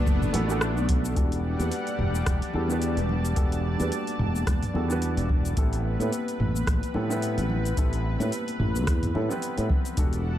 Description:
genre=sunset chillout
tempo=109 BPM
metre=4/4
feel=swing 56% on 16ths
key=E minor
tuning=A4 = 440 Hz
part: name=nylon-string guitar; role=melody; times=0.0-0.6 s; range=none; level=barely audible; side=none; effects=none
part: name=warm baby grand piano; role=accompaniment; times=0.0-10.4 s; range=G3 to B4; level=-32 LUFS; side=left 1 dB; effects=auto-pan, low-pass filter, digital delay, shimmer reverb
part: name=lush unison pad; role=sustained chords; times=0.0-10.4 s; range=G3 to D6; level=-34 LUFS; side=equal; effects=chorus, shimmer reverb
part: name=sustaining fretless electric bass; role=bass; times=0.0-10.4 s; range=E1 to A2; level=-27 LUFS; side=equal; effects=tube saturation, lush chorus
part: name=deep house drum kit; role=drums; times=0.1-10.2 s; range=cabasa, hi-hat, rim click, toms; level=-32 LUFS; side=equal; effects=none
part: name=electronic kick drum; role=drums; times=0.1-10.1 s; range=none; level=-25 LUFS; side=equal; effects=none
part: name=congas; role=percussion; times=0.1-9.8 s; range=none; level=-36 LUFS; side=left 2 dB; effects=none
room=light reverb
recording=dark, warm production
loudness=-24 LUFS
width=side -12 dB against mid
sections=0.0-1.2 A section; 1.2-10.4 B section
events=filter sweep on grand piano 1.2-10.4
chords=0.0 Bm7; 1.2 Em11; 5.6 Am9

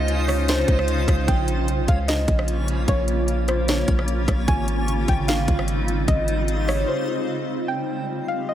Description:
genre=hip hop, atmospheric cloud-rap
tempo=150 BPM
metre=4/4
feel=half-time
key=Bb dorian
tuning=A4 = 441 Hz
part: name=soft round pluck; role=melody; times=0.0-8.5 s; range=C5 to Ab5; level=-28 LUFS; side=equal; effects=chorus, digital delay
part: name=granular cloud pad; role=sustained chords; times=0.0-8.5 s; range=Db3 to C5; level=-26 LUFS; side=equal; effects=built-in reverb, sidechain pumping
part: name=long sustained 808-style bass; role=bass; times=0.0-6.8 s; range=Ab1 to Db2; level=-23 LUFS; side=equal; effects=none
part: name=backwards swelling texture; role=texture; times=0.0-8.5 s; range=G3 to C6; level=-33 LUFS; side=right 1 dB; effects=built-in reverb
part: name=trap drum kit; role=drums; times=0.1-6.8 s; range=hi-hat, kick drum, rim click, snare drum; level=-22 LUFS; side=equal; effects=none
room=digital ambience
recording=none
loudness=-19 LUFS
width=side -11 dB against mid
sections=0.0-7.7 A section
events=break 6.9-7.7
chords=0.0 Dbmaj9; 1.3 Bbm6; 4.5 Abmaj7; 7.7 Bbm69

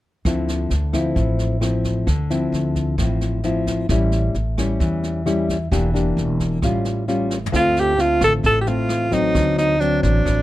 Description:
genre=bossa nova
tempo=132 BPM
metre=4/4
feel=straight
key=D minor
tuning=A4 = 438 Hz
part: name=nylon-string guitar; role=accompaniment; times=0.3-10.4 s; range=A2 to G4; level=-21 LUFS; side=left 2 dB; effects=none
part: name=upright bass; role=bass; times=0.3-10.4 s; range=E1 to E2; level=-22 LUFS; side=equal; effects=none
part: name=jazz brush drum kit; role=drums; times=0.3-10.4 s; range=kick drum, rim click, snare drum, toms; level=-26 LUFS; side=equal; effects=none
part: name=breathy alto saxophone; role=melody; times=7.6-10.4 s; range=D4 to A4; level=-18 LUFS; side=right 1 dB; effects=none
room=light reverb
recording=none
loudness=-17 LUFS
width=side -15 dB against mid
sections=0.2-7.5 A section; 7.5-10.4 B section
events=drum fill 7.3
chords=0.2 Dm9; 3.9 A7; 5.7 Em7b5; 6.6 Aaug7; 7.5 Dm7; 9.3 D7

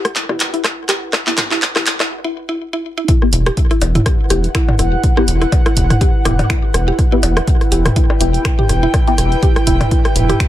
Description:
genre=minimal techno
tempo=123 BPM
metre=4/4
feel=swing 56% on 16ths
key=E minor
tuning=A4 = 440 Hz
part: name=minimal click drum kit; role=percussion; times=0.0-10.4 s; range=percussion blips, rim click, toms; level=-20 LUFS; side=left 1 dB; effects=digital delay
part: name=airy breathy pad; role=texture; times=0.0-10.5 s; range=E4 to G5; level=-22 LUFS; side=right 1 dB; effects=chorus, sidechain pumping
part: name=punchy analog drum machine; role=drums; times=0.1-10.5 s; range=finger snaps, handclaps, hi-hat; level=-19 LUFS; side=right 1 dB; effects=none
part: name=electronic kick drum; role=drums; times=0.2-10.5 s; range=none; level=-15 LUFS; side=equal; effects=high-pass filter on kick, high-pass filter on room
part: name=mallet-like synth pluck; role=riff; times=0.3-10.3 s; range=E4 to G4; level=-22 LUFS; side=left 1 dB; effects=chorus, sidechain pumping, ping-pong delay
part: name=filtered dub chord stab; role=stabs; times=0.3-9.2 s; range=B3 to G4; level=-22 LUFS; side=left 4 dB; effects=phaser, ensemble chorus, digital delay
part: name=rubbery square bass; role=bass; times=3.3-10.3 s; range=E1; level=-16 LUFS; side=equal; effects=sidechain pumping
room=little or no reverb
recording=high-pass filter, faint mains hum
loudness=-12 LUFS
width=side -13 dB against mid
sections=0.0-3.1 A section; 3.1-10.5 B section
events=build-up 0.0-3.1; drum fill 0.0-2.1; filter sweep on synth arpeggio sound 0.0-3.1; filter sweep on synth stab 0.0-3.1; filter sweep 0.0-3.1; break 2.1-3.1; drop 3.1-10.5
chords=0.0 Em

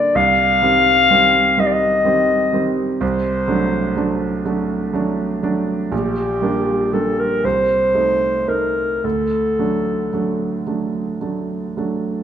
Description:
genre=classical, romantic duo for clarinet and grand piano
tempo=35-43 BPM (dotted quarters)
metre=6/8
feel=rubato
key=unclear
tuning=A4 = 440 Hz
part: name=dark clarinet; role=melody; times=0.0-10.7 s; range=G4 to F5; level=-16 LUFS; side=left 2 dB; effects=none
part: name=clear concert grand piano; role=accompaniment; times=0.0-12.2 s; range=Bb1 to Eb4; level=-20 LUFS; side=right 4 dB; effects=none
room=wet recital hall reverb, RT60 1.6 s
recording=none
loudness=-16 LUFS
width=side -9 dB against mid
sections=0.0-12.2 A section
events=none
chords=0.2 Cm; 3.0 D7/C; 5.9 Gm/Bb; 7.4 Adim/C; 9.0 D

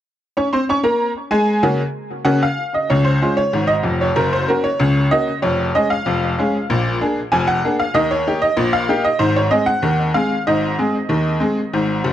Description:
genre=ragtime piano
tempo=95 BPM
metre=2/4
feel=straight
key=Db major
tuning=A4 = 443 Hz
part: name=tack piano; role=solo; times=0.4-12.1 s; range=F1 to Db6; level=-15 LUFS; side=equal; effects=analog delay
room=moderate studio reverb, RT60 0.5 s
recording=cassette tape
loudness=-15 LUFS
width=side -11 dB against mid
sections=0.4-2.9 A section; 2.9-12.1 B section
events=none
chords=0.4 Db5; 1.6 Gb/Db; 2.9 Db; 4.2 Gb; 5.4 Db/F; 6.7 Bb7; 8.0 Eb; 9.2 Ab

